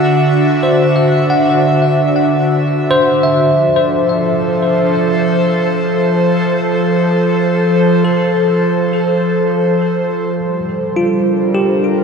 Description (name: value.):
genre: ambient.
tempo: 52 BPM.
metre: 3/4.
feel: straight.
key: unclear.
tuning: A4 = 438 Hz.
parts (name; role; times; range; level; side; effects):
airy breathy pad; sustained chords; 0.0-12.0 s; D3 to E5; -12 LUFS; equal; chorus.
bell-like tine electric piano; arpeggios; 0.0-12.0 s; F4 to F#5; -17 LUFS; left 2 dB; fast stereo tremolo, ping-pong delay.
room: wet lush hall reverb, RT60 2.9 s.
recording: none.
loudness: -11 LUFS.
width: side -5 dB against mid.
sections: 0.0-10.4 A section; 10.4-12.0 B section.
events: none.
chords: 0.0 Dadd9; 3.5 F; 10.4 Gmadd9.